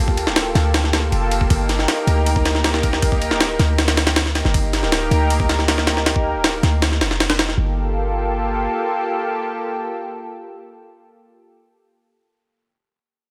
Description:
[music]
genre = drum and bass, jungle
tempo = 158 BPM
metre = 4/4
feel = straight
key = G minor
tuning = A4 = 441 Hz
[part]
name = lush unison pad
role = sustained chords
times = 0.0-11.4 s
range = Bb3 to Bb4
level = -25 LUFS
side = equal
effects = chorus
[part]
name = warm 808-style bass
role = bass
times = 0.0-8.7 s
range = D1 to D2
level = -23 LUFS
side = equal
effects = none
[part]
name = jungle sampler-style drum kit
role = drums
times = 0.1-7.6 s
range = kick drum, ride cymbal, snare drum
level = -21 LUFS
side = equal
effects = studio ambience
[sound]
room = light reverb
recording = none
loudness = -19 LUFS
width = mono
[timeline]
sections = 0.0-7.6 A section; 7.6-10.6 B section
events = none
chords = 0.0 Gm9; 1.5 Eb; 7.6 Gm9

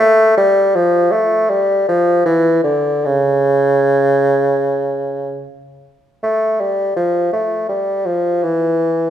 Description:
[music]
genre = classical, baroque-style fantasia for unaccompanied bassoon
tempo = 74-82 BPM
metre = 4/4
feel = rubato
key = unclear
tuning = A4 = 439 Hz
[part]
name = warm bassoon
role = solo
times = 0.0-9.1 s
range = C#3 to A3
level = -13 LUFS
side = equal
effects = none
[sound]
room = moderate recital hall reverb, RT60 1.5 s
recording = minimal, uncompressed stereo recording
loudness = -13 LUFS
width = side -10 dB against mid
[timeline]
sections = 0.0-6.2 A section; 6.2-9.1 B section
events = none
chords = none

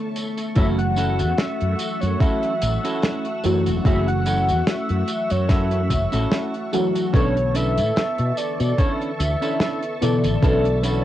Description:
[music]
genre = vaporwave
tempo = 73 BPM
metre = 4/4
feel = swing 55% on 16ths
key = F# minor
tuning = A4 = 439 Hz
[part]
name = mellow FM electric piano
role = accompaniment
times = 0.0-11.0 s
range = D3 to D5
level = -25 LUFS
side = equal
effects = analog chorus, cassette tape, analog delay
[part]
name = soft string machine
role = sustained chords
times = 0.0-11.0 s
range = A3 to E6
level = -32 LUFS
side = equal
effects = ensemble chorus, cassette tape
[part]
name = damped 70s drum kit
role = drums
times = 0.2-11.0 s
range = hi-hat, snare drum, tambourine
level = -27 LUFS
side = equal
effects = cassette tape
[part]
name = semi-hollow electric guitar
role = riff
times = 0.4-11.0 s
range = C#4 to A4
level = -29 LUFS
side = right 2 dB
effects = wide subtle chorus, cassette tape, analog delay
[part]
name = warm velvety synth lead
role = melody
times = 0.6-11.0 s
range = A4 to F#5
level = -26 LUFS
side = equal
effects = chorus, cassette tape, tape echo
[part]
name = mellow fretless electric bass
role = bass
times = 0.6-11.0 s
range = E1 to B2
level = -22 LUFS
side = equal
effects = ensemble chorus
[part]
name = electronic kick drum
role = drums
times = 0.6-10.6 s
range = none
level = -19 LUFS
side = equal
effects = overdrive, cassette tape
[sound]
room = light reverb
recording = home recording on cassette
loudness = -18 LUFS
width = side -12 dB against mid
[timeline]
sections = 0.0-11.0 A section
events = none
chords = 0.0 Bm11; 0.6 F#m7; 7.1 Bm11

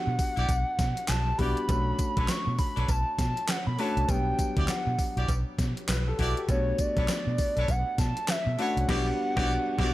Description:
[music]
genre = R&B, new jack swing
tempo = 100 BPM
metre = 4/4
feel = swing 61% on 16ths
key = B minor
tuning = A4 = 439 Hz
[part]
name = hollow clarinet-like synth lead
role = melody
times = 0.0-9.9 s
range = C#5 to C#6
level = -31 LUFS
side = equal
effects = chorus
[part]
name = warm concert grand piano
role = accompaniment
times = 0.0-9.9 s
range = F#3 to B4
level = -34 LUFS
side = left 2 dB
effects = none
[part]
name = vintage muted fingered electric bass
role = bass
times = 0.1-9.9 s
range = B1 to B2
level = -29 LUFS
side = equal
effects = none
[part]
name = gated 80s digital drum machine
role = drums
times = 0.2-9.9 s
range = crash cymbal, handclaps, hi-hat, kick drum, snare drum, tambourine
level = -30 LUFS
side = equal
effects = gated reverb, gated reverb snare, overdrive
[part]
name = warm horn section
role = stabs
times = 0.4-9.9 s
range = D4 to D5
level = -36 LUFS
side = equal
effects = tube saturation
[part]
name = cowbell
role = percussion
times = 1.7-8.5 s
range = none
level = -44 LUFS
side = right 6 dB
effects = none
[sound]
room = little or no reverb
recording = none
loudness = -25 LUFS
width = side -16 dB against mid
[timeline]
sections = 0.0-9.9 A section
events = band accent 8.9-9.9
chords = 0.0 Em9/B; 1.7 Bm9; 4.1 Em9/B; 6.5 Bm9; 8.9 Em9/B

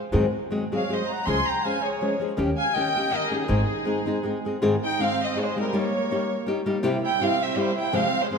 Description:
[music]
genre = mexican folk, mariachi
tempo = 161 BPM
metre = 3/4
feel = swing 53% on 8ths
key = Ab major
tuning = A4 = 440 Hz
[part]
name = flamenco guitar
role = accompaniment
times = 0.1-8.4 s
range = F2 to Ab4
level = -25 LUFS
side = left 2 dB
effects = none
[part]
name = upright bass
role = bass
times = 0.1-3.6 s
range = Ab1 to Ab2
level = -26 LUFS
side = right 1 dB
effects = none
[part]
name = rich chamber violin section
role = melody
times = 0.8-8.4 s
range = Ab4 to C6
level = -26 LUFS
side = equal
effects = none
[part]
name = warm trumpet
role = second line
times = 0.8-8.4 s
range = G3 to Ab5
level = -32 LUFS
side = right 6 dB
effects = none
[sound]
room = wet concert hall reverb, RT60 2.2 s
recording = none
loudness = -22 LUFS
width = side -5 dB against mid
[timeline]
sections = 0.0-4.6 A section; 4.6-8.4 A section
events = none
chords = 0.1 Ab7; 1.3 Db; 2.4 Eb7; 3.5 Ab; 5.7 Eb/G; 6.9 C7

